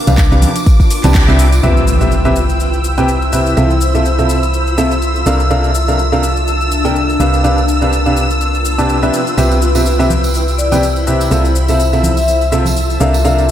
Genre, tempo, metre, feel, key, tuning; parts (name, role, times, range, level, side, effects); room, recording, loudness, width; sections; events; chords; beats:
piano house; 124 BPM; 4/4; swing 56% on 16ths; C major; A4 = 440 Hz
string machine, violins; sustained chords; 0.0-13.5 s; D6 to E6; -22 LUFS; equal; ensemble chorus, sidechain pumping
granular cloud pad; texture; 0.0-13.5 s; D4 to B5; -20 LUFS; left 1 dB; built-in reverb, sidechain pumping
clear concert grand piano; riff; 0.1-13.4 s; C3 to A5; -16 LUFS; equal; sidechain pumping, low-pass filter, diffuse ambient delay
solid FM bass; bass; 0.1-13.5 s; C2; -14 LUFS; equal; sidechain pumping
house drum kit; drums; 0.1-13.5 s; handclaps, hi-hat, shaker; -26 LUFS; left 4 dB
tambourine and congas; percussion; 0.1-1.6, 9.4-13.5 s; -24 LUFS; right 2 dB
electronic kick drum; drums; 0.2-1.3 s; -10 LUFS; equal
impact and riser; sound effects; 1.6-3.6, 13.2-13.5 s; -19 LUFS; equal
vibraphone with soft mallets; melody; 10.6-13.5 s; D5 to E5; -18 LUFS; left 3 dB; diffuse ambient delay
moderate lush hall reverb, RT60 1.9 s, digital ambience; dreamy mix soaked in reverb; -10 LUFS; side -11 dB against mid
0.0-1.6 A section; 1.6-13.5 B section
band accent 1.1; impact 1.6-3.6
0.0 G7/C; 1.6 Cmaj7; 3.6 Fmaj7/C; 5.3 Bbmaj7/C; 7.2 G7/C; 9.4 Cmaj7; 11.3 Fmaj7/C; 13.0 Bbmaj7/C
0.18 0.67 1.15 | 1.63 2.12 2.60 3.08 | 3.57 4.05 4.54 5.02 | 5.50 5.99 6.47 6.96 | 7.44 7.92 8.41 8.89 | 9.38 9.86 10.34 10.83 | 11.31 11.79 12.28 12.76 | 13.25